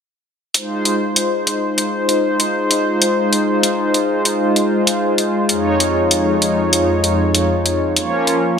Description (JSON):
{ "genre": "synthwave", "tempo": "97 BPM", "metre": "4/4", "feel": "straight", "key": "F minor", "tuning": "A4 = 439 Hz", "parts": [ { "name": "brassy analog pad", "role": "sustained chords", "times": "0.5-8.6 s", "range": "F2 to Db5", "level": "-15 LUFS", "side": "equal", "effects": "chorus, tremolo, vintage 12-bit sampler grit" }, { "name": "electronic hi-hat", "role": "drums", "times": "0.5-8.4 s", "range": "none", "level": "-16 LUFS", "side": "equal", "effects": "studio reverb" } ], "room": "moderate plate reverb, RT60 1.7 s, digital ambience", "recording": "bright 1980s-style digital production", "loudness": "-14 LUFS", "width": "side -7 dB against mid", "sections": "0.5-8.6 A section", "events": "none", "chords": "0.5 Fm7; 5.5 Dbadd9/F; 8.0 Bbm/F" }